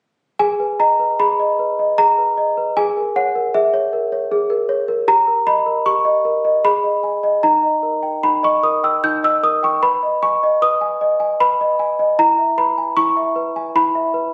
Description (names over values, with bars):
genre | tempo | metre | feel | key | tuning
classical, lullaby for celesta | 76 BPM | 3/4 | straight | G# minor | A4 = 440 Hz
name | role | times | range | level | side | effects
worn celesta | solo | 0.4-14.3 s | D#4 to G6 | -17 LUFS | equal | none
room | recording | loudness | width
light reverb | recorded on a phone in the room, studio reverb | -17 LUFS | mono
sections
0.4-14.3 A section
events
none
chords
0.4 G#m; 2.8 A#m7b5/G#; 5.1 D#/G; 6.6 G#m; 7.4 D#; 9.8 G#m/B; 12.2 E